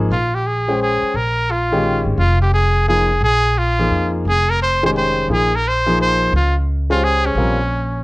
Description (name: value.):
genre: jazz.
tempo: 174 BPM.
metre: 3/4.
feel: swing 64% on 8ths.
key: Bb dorian.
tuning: A4 = 440 Hz.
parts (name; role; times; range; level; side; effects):
clear baby grand piano; accompaniment; 0.0-7.6 s; Eb3 to G5; -20 LUFS; left 1 dB; none.
upright bass; bass; 0.0-8.0 s; F1 to F2; -19 LUFS; equal; none.
bright trumpet; melody; 0.1-8.0 s; Db4 to C5; -17 LUFS; equal; none.
room: light reverb.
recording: worn, warbling old tape, cassette tape, warbly pitch drift.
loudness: -14 LUFS.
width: side -22 dB against mid.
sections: 0.1-8.0 A section.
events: none.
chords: 0.1 Bbm9.